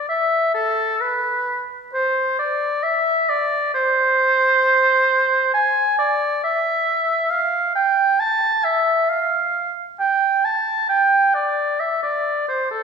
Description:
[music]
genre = classical, baroque-style fantasia for unaccompanied oboe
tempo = 67 BPM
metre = 3/4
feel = rubato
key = unclear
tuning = A4 = 440 Hz
[part]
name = clear oboe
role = solo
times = 0.0-12.8 s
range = A4 to A5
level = -17 LUFS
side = right 1 dB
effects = none
[sound]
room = wet recital hall reverb, RT60 1.4 s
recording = small room ambience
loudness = -17 LUFS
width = side -6 dB against mid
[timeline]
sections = 0.0-12.8 A section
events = none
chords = none

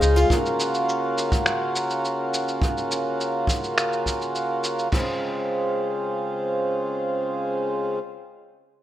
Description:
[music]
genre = folktronica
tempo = 104 BPM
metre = 4/4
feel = straight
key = Db major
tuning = A4 = 440 Hz
[part]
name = pedal harmonium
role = sustained chords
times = 0.0-8.0 s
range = Db3 to Gb4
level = -24 LUFS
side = equal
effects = none
[part]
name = lo-fi sampler-style drum kit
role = drums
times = 0.0-5.0 s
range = cabasa, crash cymbal, finger snaps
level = -28 LUFS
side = equal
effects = none
[part]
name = kick drum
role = drums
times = 0.3-5.0 s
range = none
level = -24 LUFS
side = equal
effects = none
[sound]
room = moderate lush hall reverb, RT60 1.7 s, studio ambience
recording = rough home demo mix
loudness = -22 LUFS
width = side -12 dB against mid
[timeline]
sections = 0.0-4.9 A section; 4.9-7.2 B section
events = none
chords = 0.3 Gbmaj7/Db; 4.9 Dbmaj7

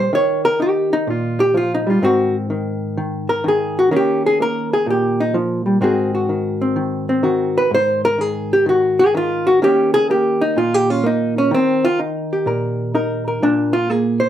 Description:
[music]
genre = solo jazz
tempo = 126 BPM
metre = 4/4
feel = swing 68% on 8ths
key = Eb mixolydian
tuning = A4 = 442 Hz
[part]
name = hollow-body jazz guitar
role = solo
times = 0.0-14.3 s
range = Ab2 to Db5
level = -15 LUFS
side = equal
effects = none
[sound]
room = wet studio reverb, RT60 0.6 s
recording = rough home demo mix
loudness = -15 LUFS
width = side -10 dB against mid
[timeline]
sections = 0.0-14.3 A section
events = hollow-body jazz guitar solo 0.0-14.3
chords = 0.0 Eb9; 2.0 Ab; 3.9 Eb9; 5.8 Ab7; 9.6 Eb7; 13.4 Bb5

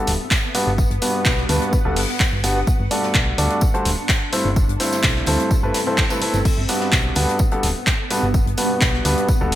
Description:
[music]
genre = piano house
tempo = 127 BPM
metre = 4/4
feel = straight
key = G major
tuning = A4 = 439 Hz
[part]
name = clear baby grand piano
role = riff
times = 0.0-9.5 s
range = G2 to D5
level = -22 LUFS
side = equal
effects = sidechain pumping, low-pass filter, digital delay
[part]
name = granular cloud pad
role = texture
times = 0.1-9.6 s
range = B3 to F#5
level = -28 LUFS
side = equal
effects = built-in reverb, analog chorus, sidechain pumping
[part]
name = solid FM bass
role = bass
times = 0.1-9.6 s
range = D1 to D2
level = -22 LUFS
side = equal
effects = sidechain pumping
[part]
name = punchy analog drum machine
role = drums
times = 0.1-9.6 s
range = crash cymbal, handclaps, hi-hat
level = -22 LUFS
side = equal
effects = gated reverb
[part]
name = tight funk drum kit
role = drums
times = 0.1-9.6 s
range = hi-hat, snare drum, tambourine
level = -31 LUFS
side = left 2 dB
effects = high-pass filter on hats, high-pass filter on snare, high-pass filter on perc, high-pass filter on room, gated reverb
[part]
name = electronic kick drum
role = drums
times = 0.3-9.4 s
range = none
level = -20 LUFS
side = equal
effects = none
[sound]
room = light reverb, studio ambience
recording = bright 1980s-style digital production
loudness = -16 LUFS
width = side -13 dB against mid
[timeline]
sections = 0.0-9.6 A section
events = none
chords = 0.0 Gmaj7; 2.7 D/G; 4.3 Am/G; 6.5 Gmaj7

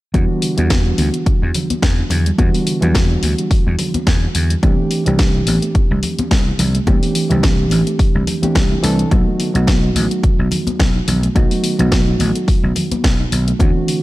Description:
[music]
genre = nu-disco, nu disco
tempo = 107 BPM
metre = 4/4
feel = swing 56% on 16ths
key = E minor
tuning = A4 = 439 Hz
[part]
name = bright reed electric piano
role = accompaniment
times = 0.1-14.0 s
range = E3 to A4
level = -20 LUFS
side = right 1 dB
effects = overdrive
[part]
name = soft round pluck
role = arpeggios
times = 0.1-14.0 s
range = D3 to E4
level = -27 LUFS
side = right 4 dB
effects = none
[part]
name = vintage slap bass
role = bass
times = 0.1-13.7 s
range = A1 to E2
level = -18 LUFS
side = equal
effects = sidechain pumping
[part]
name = electronic kick drum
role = drums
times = 0.1-13.7 s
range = none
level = -15 LUFS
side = equal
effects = none
[part]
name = house drum kit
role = drums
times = 0.1-14.0 s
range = hi-hat, snare drum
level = -23 LUFS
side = left 1 dB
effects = none
[part]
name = congas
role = percussion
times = 0.1-13.7 s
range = none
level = -25 LUFS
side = left 2 dB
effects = none
[sound]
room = little or no reverb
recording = dry, gritty hardware recording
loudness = -13 LUFS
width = side -17 dB against mid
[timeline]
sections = 0.1-14.0 A section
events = none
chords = 0.1 Em7; 4.6 C6; 9.1 B7

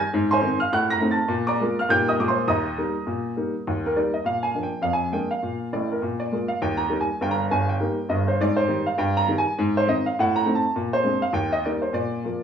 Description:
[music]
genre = jazz, stride piano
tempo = 203 BPM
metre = 4/4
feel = swing 60% on 8ths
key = Eb major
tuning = A4 = 442 Hz
[part]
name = clear upright piano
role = solo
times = 0.0-12.4 s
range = G1 to Bb6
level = -21 LUFS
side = equal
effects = none
[sound]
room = wet large studio reverb, RT60 0.8 s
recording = band playing live in one room, small room ambience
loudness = -21 LUFS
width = side -8 dB against mid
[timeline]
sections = 0.0-3.7 A section; 3.7-12.4 A section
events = none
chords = 0.1 Ab; 0.7 Adim7; 1.3 Bb7; 1.9 Eb/Bb; 2.2 Bb5; 2.5 Eb; 4.2 Bb; 4.8 Bb7/F; 6.0 Bb7; 6.6 Eb; 7.2 Eb/G; 8.4 Abmaj7; 9.0 Eb/G; 9.6 Ab; 10.2 Adim; 10.8 Bb9; 11.3 Eb

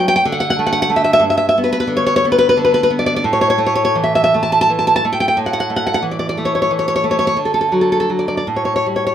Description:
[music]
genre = romantic piece for solo classical guitar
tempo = 47-62 BPM (dotted quarters)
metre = 6/8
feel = rubato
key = unclear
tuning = A4 = 439 Hz
[part]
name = nylon-string guitar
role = solo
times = 0.0-9.1 s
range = G2 to A5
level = -13 LUFS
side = equal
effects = none
[sound]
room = moderate stone room reverb, RT60 1.0 s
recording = band playing live in one room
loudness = -13 LUFS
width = side -10 dB against mid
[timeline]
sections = 0.0-9.1 A section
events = none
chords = 0.2 D5; 1.2 G; 3.2 A5; 7.4 D; 8.5 A7

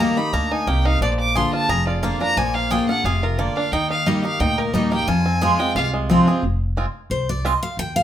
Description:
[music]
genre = bluegrass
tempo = 177 BPM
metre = 4/4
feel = straight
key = F dorian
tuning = A4 = 438 Hz
[part]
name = rich fiddle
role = melody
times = 0.0-5.9 s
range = Bb4 to D6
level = -23 LUFS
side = left 1 dB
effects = none
[part]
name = picked steel-string acoustic guitar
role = accompaniment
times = 0.0-8.0 s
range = F2 to G5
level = -22 LUFS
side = left 1 dB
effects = none
[part]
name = bluegrass banjo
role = arpeggios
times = 0.0-7.5 s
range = F3 to Ab4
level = -26 LUFS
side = right 3 dB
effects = none
[part]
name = mandolin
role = stabs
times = 0.0-7.5 s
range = Bb3 to Bb5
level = -26 LUFS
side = right 6 dB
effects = none
[part]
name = upright bass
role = bass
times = 0.0-8.0 s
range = F1 to F2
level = -24 LUFS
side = equal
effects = none
[sound]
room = moderate studio reverb, RT60 0.8 s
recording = minimal, uncompressed stereo recording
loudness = -18 LUFS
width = side -10 dB against mid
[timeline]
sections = 0.0-6.4 A section; 6.4-8.0 A section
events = fiddle solo 0.0-6.4; steel-string acoustic guitar solo 6.4-8.0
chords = 0.0 Eb; 1.0 Bb; 3.7 Eb; 5.1 Fm

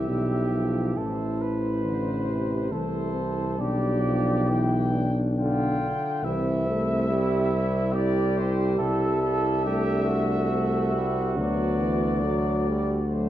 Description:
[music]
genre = classical, hymn-like piece for brass band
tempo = 69 BPM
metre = 3/4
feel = rubato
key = C major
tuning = A4 = 437 Hz
[part]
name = mellow trumpet section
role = melody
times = 0.0-13.3 s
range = C5 to G5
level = -32 LUFS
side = left 5 dB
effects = none
[part]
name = clear flugelhorn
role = second line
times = 0.0-13.3 s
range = E4 to B4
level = -32 LUFS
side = right 5 dB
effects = none
[part]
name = clear trombone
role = accompaniment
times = 0.0-13.3 s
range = C3 to A3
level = -30 LUFS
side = right 2 dB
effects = none
[part]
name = warm euphonium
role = accompaniment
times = 0.0-13.3 s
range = F#3 to E4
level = -31 LUFS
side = left 1 dB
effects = none
[part]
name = warm tuba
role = bass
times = 0.0-13.3 s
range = A1 to D2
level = -26 LUFS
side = equal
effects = none
[sound]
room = wet recital hall reverb, RT60 1.3 s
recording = dark, warm production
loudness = -23 LUFS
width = side -12 dB against mid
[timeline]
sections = 0.0-13.3 A section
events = none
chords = 0.0 C (rootless); 1.0 Am; 3.6 G/B; 6.2 C; 8.8 Am7/C; 11.4 D

